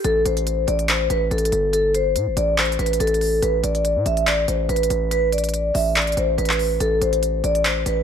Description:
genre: hip hop, trap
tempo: 142 BPM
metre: 4/4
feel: half-time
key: A minor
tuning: A4 = 440 Hz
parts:
  - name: vibraphone with soft mallets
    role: melody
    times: 0.0-8.0 s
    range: A4 to E5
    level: -20 LUFS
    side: left 1 dB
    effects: none
  - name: hard-hitting 808-style bass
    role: bass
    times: 0.0-8.0 s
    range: G1 to A2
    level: -23 LUFS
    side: equal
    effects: none
  - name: trap drum kit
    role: drums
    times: 0.0-8.0 s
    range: handclaps, hi-hat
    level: -24 LUFS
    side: equal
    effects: none
room: light reverb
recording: none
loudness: -18 LUFS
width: side -8 dB against mid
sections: 0.0-8.0 A section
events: none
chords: 0.0 Gsus2; 3.4 Asus2

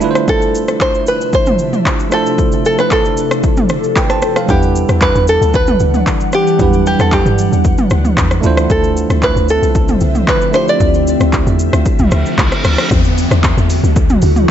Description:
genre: amapiano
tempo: 114 BPM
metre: 4/4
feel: straight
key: unclear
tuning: A4 = 441 Hz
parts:
  - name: bell-like tine electric piano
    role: accompaniment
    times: 0.0-12.9 s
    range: F#3 to A5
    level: -19 LUFS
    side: right 7 dB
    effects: none
  - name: ethereal airy pad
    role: sustained chords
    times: 0.0-14.5 s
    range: C3 to F#5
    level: -20 LUFS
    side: left 2 dB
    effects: ensemble chorus, built-in reverb, phaser, sidechain pumping
  - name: deep house drum kit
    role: drums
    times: 0.0-14.5 s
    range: handclaps, hi-hat, kick drum, rim click, shaker, toms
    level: -15 LUFS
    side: left 1 dB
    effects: overdrive
  - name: downlifter and reverse cymbal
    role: sound effects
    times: 0.0-0.3, 12.1-14.5 s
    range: none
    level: -20 LUFS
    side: right 1 dB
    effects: none
  - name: open-back banjo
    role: melody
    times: 0.3-12.3 s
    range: G4 to D5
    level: -15 LUFS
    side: right 1 dB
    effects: ping-pong delay
  - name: deep log drum bass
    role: bass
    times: 4.5-14.5 s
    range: C2 to G2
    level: -14 LUFS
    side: left 1 dB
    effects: none
room: light reverb, digital ambience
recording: nothing above 7.9 kHz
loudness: -10 LUFS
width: side -10 dB against mid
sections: 0.0-12.9 A section; 12.9-14.5 B section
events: reverse cymbal 12.1-12.9; drop 12.9-14.5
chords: 0.0 Dm9; 4.5 Em9; 8.4 Dm9; 12.9 Em9

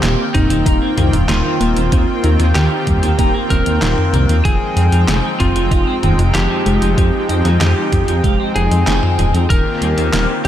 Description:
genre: synthwave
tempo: 95 BPM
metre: 4/4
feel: straight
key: F minor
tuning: A4 = 439 Hz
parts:
  - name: lightly driven lead guitar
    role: melody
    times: 0.0-10.5 s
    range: Eb4 to Bb4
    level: -21 LUFS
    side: equal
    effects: ping-pong delay
  - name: brassy analog pad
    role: sustained chords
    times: 0.0-10.5 s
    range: Eb3 to G5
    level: -20 LUFS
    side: left 1 dB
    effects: chorus, tremolo, sidechain pumping
  - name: thumb-piano-like synth pluck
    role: arpeggios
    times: 0.0-10.5 s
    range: Eb3 to Eb4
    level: -24 LUFS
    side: right 2 dB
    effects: chorus, diffuse ambient delay
  - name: clean electric guitar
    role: riff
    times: 0.0-10.3 s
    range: Eb3 to F4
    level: -26 LUFS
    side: equal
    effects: analog chorus, diffuse ambient delay
  - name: dark detuned saw bass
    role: bass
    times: 0.0-10.5 s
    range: Eb1 to F2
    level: -16 LUFS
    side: equal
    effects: sidechain pumping
  - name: detuned 8-bit digital drum machine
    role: drums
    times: 0.0-10.5 s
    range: handclaps, hi-hat, snare drum, toms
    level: -21 LUFS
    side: equal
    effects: overdrive
  - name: electronic kick drum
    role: drums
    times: 0.3-10.5 s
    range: none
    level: -17 LUFS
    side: equal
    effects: overdrive
room: light reverb, digital ambience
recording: none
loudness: -12 LUFS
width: side -11 dB against mid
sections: 0.0-10.5 A section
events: none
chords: 0.0 Eb6; 4.4 Fm7; 9.5 Eb6

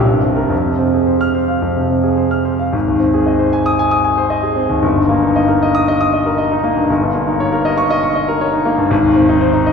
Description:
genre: classical, virtuoso piano study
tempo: 105-121 BPM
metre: 4/4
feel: rubato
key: Ab major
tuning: A4 = 440 Hz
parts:
  - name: clear concert grand piano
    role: solo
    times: 0.0-9.7 s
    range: G1 to F6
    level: -12 LUFS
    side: equal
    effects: none
room: wet church reverb, RT60 3.0 s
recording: heard from further back in the room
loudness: -12 LUFS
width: side -6 dB against mid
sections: 0.0-2.7 A section; 2.7-9.7 B section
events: none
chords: 0.0 C5; 0.5 Fm; 2.7 Ab; 4.8 Eb/G; 6.9 Eb7/G; 8.9 Ab

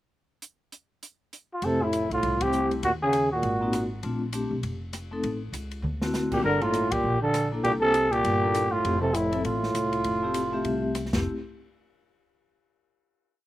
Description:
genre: jazz, small-group swing and bop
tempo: 199 BPM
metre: 4/4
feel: swing 60% on 8ths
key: F major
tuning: A4 = 440 Hz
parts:
  - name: open jazz drum kit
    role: drums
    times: 0.4-11.2 s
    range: crash cymbal, hi-hat, kick drum, ride cymbal, rim click, snare drum, toms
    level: -34 LUFS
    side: equal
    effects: none
  - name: growling trumpet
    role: melody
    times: 1.5-3.9, 6.3-10.9 s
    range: E4 to Bb4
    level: -25 LUFS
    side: equal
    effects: slapback echo
  - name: breathy trombone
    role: second line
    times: 1.6-3.9, 6.3-10.9 s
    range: A2 to D3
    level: -28 LUFS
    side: right 2 dB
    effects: slapback echo
  - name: vibraphone with medium hard mallets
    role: accompaniment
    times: 1.6-11.2 s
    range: A3 to E5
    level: -31 LUFS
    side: left 2 dB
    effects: slapback echo
  - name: upright bass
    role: bass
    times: 1.6-11.2 s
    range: F1 to Eb2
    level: -32 LUFS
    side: equal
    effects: none
room: little or no reverb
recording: recorded outdoors, with no room sound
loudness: -24 LUFS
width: side -14 dB against mid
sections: 0.4-1.6 pickup bar; 1.6-11.3 A section; 11.3-12.5 final hit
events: band accent 2.4, 6.9; drum fill 5.8-6.1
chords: 0.4 N.C.; 1.6 Fmaj7; 2.8 Ebmadd11; 3.4 Ab9; 4.0 Bbmaj7; 5.2 A; 5.8 D7; 6.4 Gm9; 7.6 C13; 8.8 Fmaj7; 11.3 N.C.

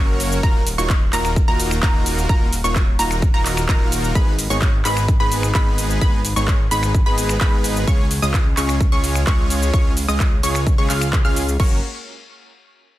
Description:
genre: EDM, festival progressive house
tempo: 129 BPM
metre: 4/4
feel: straight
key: F# major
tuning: A4 = 439 Hz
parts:
  - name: wide unison pluck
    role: arpeggios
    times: 0.0-11.8 s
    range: A#5 to E#6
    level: -26 LUFS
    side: right 1 dB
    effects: sidechain pumping, tape echo
  - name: supersaw chords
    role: riff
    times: 0.0-11.8 s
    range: G#3 to E#5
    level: -24 LUFS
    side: equal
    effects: sidechain pumping, tape echo
  - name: fat analog bass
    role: bass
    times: 0.0-11.8 s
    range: D#1 to C#2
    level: -23 LUFS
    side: equal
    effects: sidechain pumping
  - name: big-room dance drum kit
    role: drums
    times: 0.2-11.7 s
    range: crash cymbal, finger snaps, handclaps, hi-hat, shaker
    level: -25 LUFS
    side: equal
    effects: overdrive, small room ambience
  - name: electronic kick drum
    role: drums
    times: 0.4-11.7 s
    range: none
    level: -17 LUFS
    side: equal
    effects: overdrive, small room ambience
room: little or no reverb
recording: dense, heavily limited modern master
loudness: -15 LUFS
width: side -15 dB against mid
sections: 0.0-11.6 A section; 11.6-13.0 B section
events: drop 0.0-11.6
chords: 0.4 D#madd9; 4.2 G#m; 7.9 C#; 11.6 F#

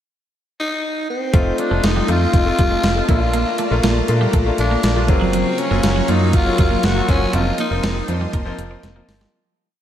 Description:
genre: 1980s-style pop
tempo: 120 BPM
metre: 4/4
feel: straight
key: unclear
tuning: A4 = 439 Hz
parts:
  - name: growling tenor saxophone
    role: melody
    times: 0.6-8.3 s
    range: C4 to Gb4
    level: -22 LUFS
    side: left 1 dB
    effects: analog delay
  - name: bright concert grand piano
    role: accompaniment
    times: 1.3-9.4 s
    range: Db3 to F4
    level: -22 LUFS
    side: left 3 dB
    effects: none
  - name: string machine, violins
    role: sustained chords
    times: 1.3-9.3 s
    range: Gb3 to Db6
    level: -27 LUFS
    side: equal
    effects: ensemble chorus
  - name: twelve-string electric guitar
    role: riff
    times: 1.3-9.3 s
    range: Gb3 to C4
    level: -26 LUFS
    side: right 4 dB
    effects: wide subtle chorus, analog delay
  - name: slap-like FM bass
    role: bass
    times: 1.3-9.3 s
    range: F1 to Bb2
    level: -20 LUFS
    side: equal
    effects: none
  - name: clean 12-bit digital drum machine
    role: drums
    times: 1.3-9.3 s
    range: hi-hat, kick drum, snare drum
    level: -20 LUFS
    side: equal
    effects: none
room: wet lush hall reverb, RT60 1.7 s, digital ambience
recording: dreamy mix soaked in reverb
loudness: -15 LUFS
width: side -10 dB against mid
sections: 0.0-1.3 pickup bar; 1.3-9.3 pre-chorus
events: fade-out 7.3-9.3; drum fill 8.8-9.3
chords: 0.0 N.C.; 1.3 F7; 3.1 Bbmaj7; 5.1 Gbmaj7; 7.3 F7sus4

